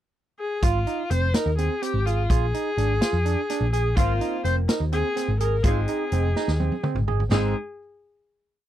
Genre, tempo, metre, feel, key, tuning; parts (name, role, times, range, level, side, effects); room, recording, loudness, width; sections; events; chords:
progressive instrumental, band music in an uneven meter; 252 BPM (eighths); 7/8; straight; Ab lydian; A4 = 438 Hz
warm viola; melody; 0.4-7.5 s; F4 to C5; -28 LUFS; left 3 dB
overdriven tine electric piano; arpeggios; 0.6-7.5 s; Ab3 to Ab4; -30 LUFS; right 16 dB
hollow-body short-scale picked electric bass; bass; 0.6-7.5 s; F1 to F2; -23 LUFS; equal
vintage drum kit; drums; 0.6-7.4 s; hi-hat, kick drum, snare drum, splash cymbal, toms; -25 LUFS; equal
archtop guitar, miked and amplified; accompaniment; 4.0-7.5 s; Ab3 to F4; -32 LUFS; left 2 dB; double-tracked left and right
little or no reverb; dry, close 1970s-style studio recording; -21 LUFS; side -12 dB against mid
0.0-0.6 pickup bar; 0.6-7.3 A section; 7.3-8.7 final chord
drum fill 6.4-7.3
0.0 N.C.; 0.6 Ab6; 2.3 Bb7; 4.0 Ab6; 5.6 Ab